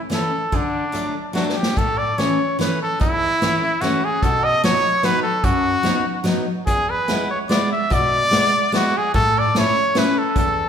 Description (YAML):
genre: alpine folk, alpine dance band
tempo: 146 BPM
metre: 3/4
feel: rubato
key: A major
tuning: A4 = 440 Hz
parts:
  - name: clear trumpet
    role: melody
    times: 0.1-10.7 s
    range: D4 to E5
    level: -19 LUFS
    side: equal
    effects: none
  - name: picked steel-string acoustic guitar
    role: accompaniment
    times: 0.1-10.7 s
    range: E2 to E4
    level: -22 LUFS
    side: left 1 dB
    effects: none
  - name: unplugged drum kit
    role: drums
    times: 0.1-10.5 s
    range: hi-hat, kick drum, snare drum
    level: -24 LUFS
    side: equal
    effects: none
room: wet recital hall reverb, RT60 1.6 s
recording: recorded in a church or concert hall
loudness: -17 LUFS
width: side -8 dB against mid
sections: 0.0-1.8 A section; 1.8-10.7 B section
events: drum fill 1.3-1.8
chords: 0.0 A; 0.5 D; 1.8 A; 4.2 B; 6.7 E7; 9.1 A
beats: 0.11 | 0.52 0.93 1.35 | 1.77 2.18 2.60 | 3.01 3.42 3.82 | 4.22 4.63 5.03 | 5.44 5.84 6.26 | 6.67 7.09 7.50 | 7.91 8.32 8.73 | 9.14 9.54 9.95 | 10.35